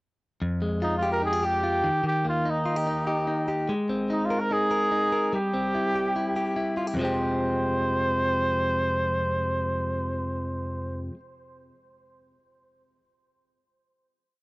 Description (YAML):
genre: indie pop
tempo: 146 BPM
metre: 4/4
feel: straight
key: F minor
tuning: A4 = 440 Hz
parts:
  - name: direct-recorded clean electric guitar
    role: arpeggios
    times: 0.4-11.2 s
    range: F2 to Bb4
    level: -27 LUFS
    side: left 1 dB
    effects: none
  - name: mellow trumpet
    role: melody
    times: 0.8-11.0 s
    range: Eb4 to C5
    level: -27 LUFS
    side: right 1 dB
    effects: tube saturation
room: light reverb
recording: home recording on cassette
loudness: -24 LUFS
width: side -23 dB against mid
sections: 0.4-7.0 verse; 7.0-10.2 final chord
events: none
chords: 0.4 Fmadd9; 1.9 Eb; 3.7 Abadd9; 5.3 C/G; 7.0 Fmadd9